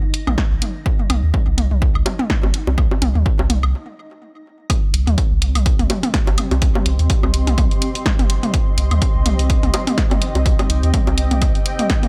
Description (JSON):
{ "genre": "minimal techno", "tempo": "125 BPM", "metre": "4/4", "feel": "swing 56% on 16ths", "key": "C minor", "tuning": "A4 = 440 Hz", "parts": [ { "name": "swarming drone", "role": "texture", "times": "0.0-3.7 s", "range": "Eb4", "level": "-41 LUFS", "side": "equal", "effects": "built-in reverb, sidechain pumping" }, { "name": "punchy analog drum machine", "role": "drums", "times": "0.1-12.1 s", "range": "hi-hat, snare drum", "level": "-26 LUFS", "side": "equal", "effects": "small room ambience" }, { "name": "round analog bass", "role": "bass", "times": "0.3-11.5 s", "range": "G1 to Eb2", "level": "-20 LUFS", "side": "equal", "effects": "sidechain pumping" }, { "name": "electronic toms, woodblock and bongos", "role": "percussion", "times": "0.3-12.1 s", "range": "none", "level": "-26 LUFS", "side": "equal", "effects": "small room ambience, digital delay" }, { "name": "electronic kick drum", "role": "drums", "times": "0.4-12.0 s", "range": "none", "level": "-20 LUFS", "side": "equal", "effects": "small room ambience" }, { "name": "granular cloud pad", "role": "texture", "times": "5.5-12.1 s", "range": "C4 to C6", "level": "-28 LUFS", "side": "equal", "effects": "built-in reverb, sidechain pumping" } ], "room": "little or no reverb", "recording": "none", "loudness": "-18 LUFS", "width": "mono", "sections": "0.0-4.7 A section; 4.7-12.1 B section", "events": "stop 3.7-4.7; drop 4.7-12.1", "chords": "0.0 Cm" }